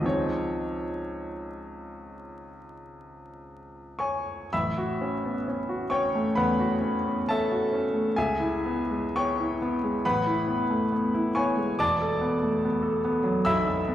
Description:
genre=classical, impressionist solo piano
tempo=51-73 BPM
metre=4/4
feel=rubato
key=Db major, A major from 4.5 s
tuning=A4 = 440 Hz
part: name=bright baby grand piano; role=solo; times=0.0-13.9 s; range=E1 to E6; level=-25 LUFS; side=equal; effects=none
room=wet recital hall reverb, RT60 1.6 s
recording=heard from further back in the room, vinyl crackle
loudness=-24 LUFS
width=side -12 dB against mid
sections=0.0-4.5 A section; 4.5-13.9 B section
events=none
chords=0.0 Dbmaj9; 4.5 A6; 8.1 C#m7; 10.0 Amaj9; 11.8 E9sus4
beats=| 0.04 1.16 2.28 3.41 | 4.52 5.44 6.34 7.26 | 8.15 9.15 10.04 10.93 | 11.81 12.65 13.48

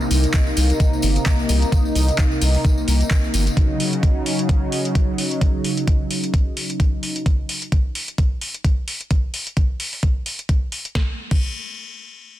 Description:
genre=acid house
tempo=130 BPM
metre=4/4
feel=swing 56% on 16ths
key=unclear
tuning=A4 = 440 Hz
part: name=warm analog pad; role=sustained chords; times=0.0-7.2 s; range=C3 to Eb4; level=-23 LUFS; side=equal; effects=chorus, sidechain pumping
part: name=tambourine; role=percussion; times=0.0-3.5 s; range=none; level=-32 LUFS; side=left 3 dB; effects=none
part: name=saturated sub bass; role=bass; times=0.1-3.5 s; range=G1 to C2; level=-17 LUFS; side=equal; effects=sidechain pumping
part: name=booming analog drum machine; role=drums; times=0.1-11.4 s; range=crash cymbal, handclaps, hi-hat, snare drum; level=-27 LUFS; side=left 1 dB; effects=none
part: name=electronic kick drum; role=drums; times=0.3-11.4 s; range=none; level=-18 LUFS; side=equal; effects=none
room=digital ambience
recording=dense, heavily limited modern master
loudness=-18 LUFS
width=side -14 dB against mid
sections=0.0-11.0 A section; 11.0-12.4 B section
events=none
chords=0.0 Cm7; 3.6 Ebm7; 11.0 N.C.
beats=0.34 0.80 1.26 | 1.72 2.18 2.64 3.11 | 3.57 4.03 4.49 4.95 | 5.41 5.88 6.34 6.80 | 7.26 7.72 8.18 8.64 | 9.11 9.57 10.03 10.49 | 10.95 11.41

